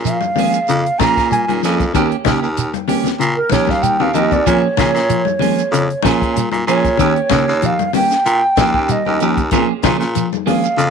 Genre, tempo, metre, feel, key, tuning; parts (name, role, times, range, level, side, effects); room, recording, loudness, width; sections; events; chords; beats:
afrobeat; 95 BPM; 4/4; swing 54% on 16ths; Bb dorian; A4 = 440 Hz
raspy baritone saxophone; bass; 0.0-10.9 s; Eb2 to Bb2; -19 LUFS; left 1 dB
wooden flute; melody; 0.1-10.9 s; Bb4 to Bb5; -17 LUFS; right 3 dB
clean electric guitar; arpeggios; 0.1-10.9 s; Db3 to Ab3; -22 LUFS; left 15 dB
compact cocktail drum kit; drums; 0.1-10.9 s; hi-hat, kick drum, snare drum; -22 LUFS; left 4 dB
congas; percussion; 0.1-10.9 s; -22 LUFS; left 16 dB
shekere; percussion; 0.1-10.9 s; -24 LUFS; right 8 dB
clean electric guitar; stabs; 0.4-10.7 s; F3 to Ab4; -21 LUFS; right 13 dB
light reverb, small room ambience; 1960s-style stereo with parts hard left and right; -13 LUFS; side -6 dB against mid
0.0-10.9 A section
flute solo 0.0-10.9; drum fill 3.5-4.5
0.0 Bbm7; 2.0 Eb7; 4.5 Bbm7; 7.0 Eb7; 9.5 Bbm7
0.07 0.70 1.33 | 1.96 2.59 3.22 3.85 | 4.48 5.11 5.74 6.37 | 7.00 7.63 8.26 8.89 | 9.52 10.15 10.78